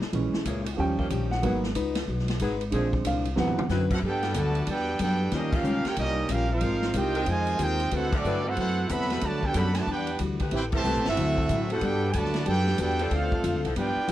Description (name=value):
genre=jazz, big band swing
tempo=185 BPM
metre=4/4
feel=swing 64% on 8ths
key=G major from 4.0 s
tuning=A4 = 440 Hz
part: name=picked plugged-in steel-string acoustic guitar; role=accompaniment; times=0.0-14.1 s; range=G2 to Cb5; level=-33 LUFS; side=left 5 dB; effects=none
part: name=warm upright piano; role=accompaniment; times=0.0-3.7 s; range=C3 to G5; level=-28 LUFS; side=right 3 dB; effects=none
part: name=upright bass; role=bass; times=0.0-14.1 s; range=G1 to A2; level=-29 LUFS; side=equal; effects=none
part: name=swinging big-band drum kit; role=drums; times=0.0-14.1 s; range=crash cymbal, hi-hat, kick drum, ride cymbal, snare drum, toms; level=-34 LUFS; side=equal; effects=none
part: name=clear saxophone section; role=sustained chords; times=0.4-14.1 s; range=Eb3 to B4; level=-34 LUFS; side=left 2 dB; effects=none
part: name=bright trumpet section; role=melody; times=3.9-14.1 s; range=C4 to B5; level=-30 LUFS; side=right 2 dB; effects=none
part: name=mellow trombone section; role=second line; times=3.9-14.1 s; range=C3 to G4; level=-31 LUFS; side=right 4 dB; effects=none
room=little or no reverb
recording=none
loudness=-24 LUFS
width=side -13 dB against mid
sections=0.0-4.0 A section; 4.0-14.1 B section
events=upright piano solo 0.0-4.0; drum fill 3.4-3.7; band accent 5.5, 8.1, 10.7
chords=0.1 Bbm7b5; 0.8 Eb7; 1.4 Abm7; 2.7 Bb7; 3.4 D13; 4.0 Gmaj9; 5.3 Eb9; 6.6 Ab69; 7.9 D13; 9.2 Gmaj9; 9.9 Em9; 10.5 Am9; 11.2 D9; 11.8 Gmaj9; 13.1 Dm7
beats=| 0.13 0.46 0.78 1.10 | 1.43 1.75 2.08 2.40 | 2.73 3.05 3.38 3.70 | 4.03 4.35 4.67 5.00 | 5.32 5.65 5.97 6.30 | 6.62 6.95 7.27 7.60 | 7.92 8.24 8.57 8.89 | 9.22 9.54 9.87 10.19 | 10.52 10.84 11.16 11.49 | 11.81 12.14 12.46 12.79 | 13.11 13.44 13.76 14.09